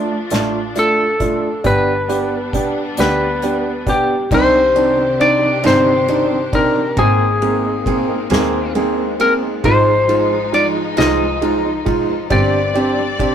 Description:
six-eight pop ballad; 45 BPM (dotted quarters); 6/8; straight; C minor; A4 = 439 Hz
warm baby grand piano; accompaniment; 0.0-13.3 s; Ab3 to Ab4; -18 LUFS; right 3 dB
warm symphonic string section; sustained chords; 0.0-13.3 s; C3 to D5; -25 LUFS; left 1 dB
muted double bass; bass; 0.0-13.3 s; G1 to F2; -23 LUFS; left 1 dB
unplugged drum kit; drums; 0.3-13.3 s; crash cymbal, hi-hat, kick drum, ride cymbal, snare drum; -25 LUFS; left 1 dB
clean lap steel guitar; melody; 0.8-13.3 s; G4 to Eb5; -16 LUFS; left 2 dB
fingerpicked steel-string acoustic guitar; arpeggios; 4.3-13.3 s; G2 to C5; -26 LUFS; left 7 dB
moderate small room reverb, RT60 0.5 s; rough rehearsal-room recording, tube saturation; -13 LUFS; side -8 dB against mid
0.0-4.3 A section; 4.3-13.3 B section
0.0 Dm; 1.6 G; 4.3 Cmadd9; 7.0 Abadd9; 9.6 Fm7/Ab; 12.3 Gsus4
0.31 | 1.65 2.98 | 4.31 5.64 | 6.97 8.31 | 9.64 10.97 | 12.31

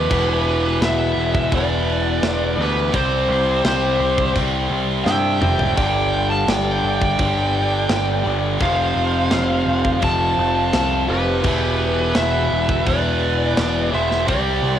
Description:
heavy metal; 85 BPM; 4/4; straight; E phrygian; A4 = 440 Hz
high-gain lead guitar; melody; 0.0-14.8 s; B4 to A5; -22 LUFS; equal; distortion, cassette tape
nasal lead guitar with a parked wah; second line; 0.0-14.8 s; G4 to F5; -28 LUFS; right 10 dB; overdrive, cassette tape, analog delay
tight distorted guitar; riff; 0.0-14.8 s; E2 to C4; -24 LUFS; left 9 dB; distortion, cassette tape
tight distorted guitar; riff; 0.0-14.8 s; E2 to C4; -25 LUFS; right 9 dB; distortion, cassette tape
growling picked electric bass; bass; 0.0-14.8 s; E1 to G2; -23 LUFS; equal; overdrive
tight metal drum kit; drums; 0.1-14.4 s; crash cymbal, kick drum, snare drum, toms; -25 LUFS; equal; cassette tape
light reverb, small room ambience; home recording on cassette; -16 LUFS; side -10 dB against mid
0.0-14.8 A section
drum fill 5.1-5.8
0.1 Em; 2.9 C; 5.8 G5; 8.6 F; 11.4 Em; 14.3 C5
| 0.10 0.81 1.52 2.23 | 2.94 3.65 4.36 5.07 | 5.78 6.48 7.19 7.90 | 8.61 9.32 10.03 10.74 | 11.45 12.16 12.87 13.57 | 14.28

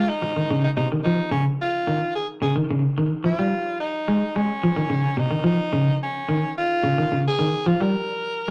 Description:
afrobeat; 109 BPM; 4/4; straight; A4 = 437 Hz
raspy tenor saxophone; melody; 0.0-8.5 s; Db4 to Bb4; -27 LUFS; equal
electric guitar at the edge of break-up; arpeggios; 0.0-8.5 s; C3 to Ab3; -24 LUFS; equal; spring reverb, slapback echo
wet studio reverb, RT60 0.5 s; rough rehearsal-room recording, tube saturation, nothing above 10.6 kHz; -23 LUFS; mono
0.0-8.5 A section
0.0 Dbadd9
0.21 0.76 | 1.31 1.86 2.42 2.97 | 3.52 4.07 4.62 5.17 | 5.72 6.28 6.83 7.38 | 7.93 8.48

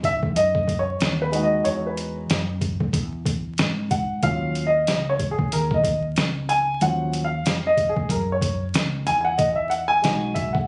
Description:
hip hop, jazz-hop; 93 BPM; 4/4; swing 58% on 16ths; A4 = 440 Hz
dark grand piano; accompaniment; 0.0-10.7 s; D#3 to Ab5; -24 LUFS; equal
woody fretless electric bass; bass; 0.0-10.6 s; B1 to G#2; -30 LUFS; equal
boom bap sampler-style drum kit; drums; 0.0-10.7 s; hi-hat, kick drum, snare drum; -27 LUFS; equal
light reverb; recorded on a phone in the room, studio ambience, vinyl crackle, nothing above 10.8 kHz; -23 LUFS; mono
0.0-10.7 A section
grand piano solo 0.0-10.7
0.0 Emaj9; 4.2 Ebm9; 9.1 Emaj9
0.36 1.00 | 1.65 2.29 2.94 3.58 | 4.23 4.88 5.52 6.17 | 6.81 7.46 8.10 8.75 | 9.39 10.04

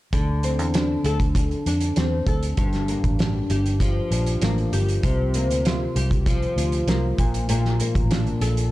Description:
indie pop, bedroom pop; 98 BPM; 4/4; straight; D minor; A4 = 435 Hz
flamenco guitar; accompaniment; 0.1-8.7 s; G2 to A4; -24 LUFS; left 1 dB; analog chorus, vibrato effect
vintage muted fingered electric bass; bass; 0.1-8.7 s; G1 to F2; -24 LUFS; equal; transformer saturation
loose indie drum kit; drums; 0.1-8.7 s; hi-hat, kick drum, snare drum; -25 LUFS; equal
studio ambience; cassette tape; -20 LUFS; side -16 dB against mid
0.1-8.7 A section
0.1 D7(no3); 2.6 Gm7; 5.0 C7sus4; 7.2 Bbmaj7
| 0.13 0.74 1.36 1.97 | 2.58 3.20 3.81 4.43 | 5.04 5.65 6.27 6.88 | 7.50 8.11

